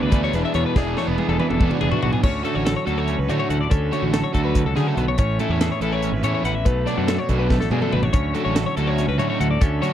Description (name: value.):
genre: math rock and midwest emo.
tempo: 285 BPM (eighths).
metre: 7/8.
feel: straight.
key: unclear.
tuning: A4 = 440 Hz.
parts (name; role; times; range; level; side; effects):
twelve-string electric guitar; accompaniment; 0.0-9.9 s; E2 to B4; -26 LUFS; right 5 dB; none.
twelve-string electric guitar; arpeggios; 0.0-9.9 s; F#4 to F#5; -26 LUFS; left 10 dB; none.
overdriven semi-hollow guitar; riff; 0.0-9.9 s; B2 to D5; -25 LUFS; right 1 dB; none.
fuzz fingered electric bass; bass; 0.0-9.8 s; E1 to D3; -24 LUFS; equal; overdrive.
crisp fusion drum kit; drums; 0.1-9.9 s; crash cymbal, hi-hat, kick drum, snare drum, toms; -22 LUFS; equal; none.
room: little or no reverb.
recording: dry, close 1970s-style studio recording.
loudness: -18 LUFS.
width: side -10 dB against mid.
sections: 0.0-2.2 A section; 2.2-9.9 B section.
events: drum fill 0.8-2.2, 7.5-8.1.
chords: 0.0 E7; 2.2 Dmaj7; 5.2 Amaj7; 6.7 Bm7; 8.1 Dmaj7.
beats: 0.12 0.34 0.55 | 0.76 0.97 1.18 1.39 1.60 1.81 2.02 | 2.23 2.45 2.66 2.87 3.08 3.29 3.50 | 3.71 3.92 4.13 4.34 4.56 4.77 4.98 | 5.19 5.40 5.61 5.82 6.03 6.24 6.45 | 6.66 6.87 7.08 7.29 7.50 7.72 7.93 | 8.14 8.35 8.56 8.77 8.98 9.19 9.40 | 9.61 9.82.